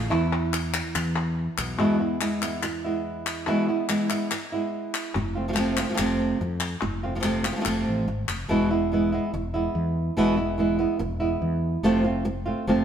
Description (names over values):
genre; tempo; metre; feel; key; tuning
flamenco; 143 BPM; 4/4; straight; unclear; A4 = 441 Hz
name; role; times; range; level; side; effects
flamenco guitar; melody; 0.0-12.8 s; E2 to F4; -24 LUFS; right 1 dB; none
mellow fretless electric bass; bass; 0.0-1.8, 5.1-12.8 s; E1 to F2; -29 LUFS; equal; none
palmas hand claps; percussion; 0.1-8.5 s; none; -30 LUFS; left 4 dB; none
room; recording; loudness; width
moderate stone room reverb, RT60 1.3 s; band playing live in one room; -23 LUFS; side -8 dB against mid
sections
0.0-1.8 A section; 1.8-8.5 B section; 8.5-12.8 B section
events
nylon-string guitar solo 0.0-1.8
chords
0.1 E5; 1.8 E; 5.1 F; 8.5 E; 11.8 F